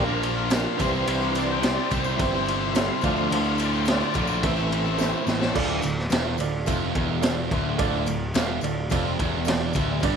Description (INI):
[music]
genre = classic rock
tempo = 107 BPM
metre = 4/4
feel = straight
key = D minor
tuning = A4 = 440 Hz
[part]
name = bright upright piano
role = accompaniment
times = 0.0-10.2 s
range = D4 to F5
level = -32 LUFS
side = right 12 dB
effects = none
[part]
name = overdriven tonewheel organ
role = sustained chords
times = 0.0-5.2 s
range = E3 to G5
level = -30 LUFS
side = equal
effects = slow rotary speaker, chorus vibrato
[part]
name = distorted electric guitar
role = riff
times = 0.0-10.2 s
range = D2 to C4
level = -29 LUFS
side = right 13 dB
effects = overdrive
[part]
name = overdriven semi-hollow guitar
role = riff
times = 0.0-10.2 s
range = D2 to C5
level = -28 LUFS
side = left 14 dB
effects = none
[part]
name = fuzz picked electric bass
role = bass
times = 0.0-10.2 s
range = D1 to D2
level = -29 LUFS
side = equal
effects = overdrive
[part]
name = raw garage drum kit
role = drums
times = 0.2-10.2 s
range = crash cymbal, kick drum, ride cymbal, snare drum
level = -27 LUFS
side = equal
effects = none
[part]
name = tambourine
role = percussion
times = 0.2-10.1 s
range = none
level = -44 LUFS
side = left 17 dB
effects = none
[sound]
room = light reverb, small room ambience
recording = 1960s-style stereo with parts hard left and right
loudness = -22 LUFS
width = side -6 dB against mid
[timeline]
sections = 0.0-5.6 A section; 5.6-10.2 B section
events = tonewheel organ solo 0.0-5.6; drum fill 5.0-5.6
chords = 0.0 Bb6; 0.8 C; 3.0 Dm; 4.4 Am; 5.6 Dm